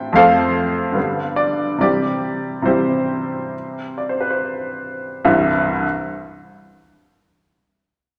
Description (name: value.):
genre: classical, romantic character piece for solo piano.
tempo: 68-77 BPM.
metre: 4/4.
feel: rubato.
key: C major.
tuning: A4 = 440 Hz.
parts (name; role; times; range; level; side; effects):
clear baby grand piano; solo; 0.0-5.9 s; C2 to A5; -19 LUFS; equal; none.
room: wet recital hall reverb, RT60 1.7 s.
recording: none.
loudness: -19 LUFS.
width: mono.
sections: 0.0-5.3 A section; 5.3-8.2 B section.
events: slowing down 0.0-5.3.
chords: 0.2 F; 1.0 G7; 1.8 C.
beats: 0.16 0.96 | 1.80 2.66 3.52 4.39 | 5.26.